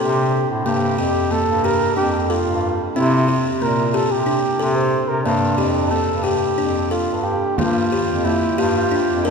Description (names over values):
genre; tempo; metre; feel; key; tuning
contemporary instrumental, chamber music in an uneven meter; 182 BPM (eighths); 7/8; straight; G dorian; A4 = 441 Hz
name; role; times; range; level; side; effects
mellow flugelhorn; melody; 0.0-9.3 s; D4 to C5; -21 LUFS; right 2 dB; none
buzzing kalimba; arpeggios; 0.0-9.3 s; Bb3 to Bb4; -21 LUFS; left 2 dB; none
clear bass clarinet; bass; 0.0-9.3 s; F2 to C3; -22 LUFS; equal; none
warm woodwind section; sustained chords; 7.6-9.3 s; F3 to G4; -28 LUFS; right 3 dB; none
frame drum; percussion; 7.6-9.3 s; none; -30 LUFS; right 4 dB; none
room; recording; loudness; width
wet cathedral reverb, RT60 5.2 s; recorded in a church or concert hall; -16 LUFS; side -5 dB against mid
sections
0.0-7.6 A section; 7.6-9.3 B section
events
none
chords
0.0 C5; 0.7 Gm7; 3.0 C5; 5.3 Gm7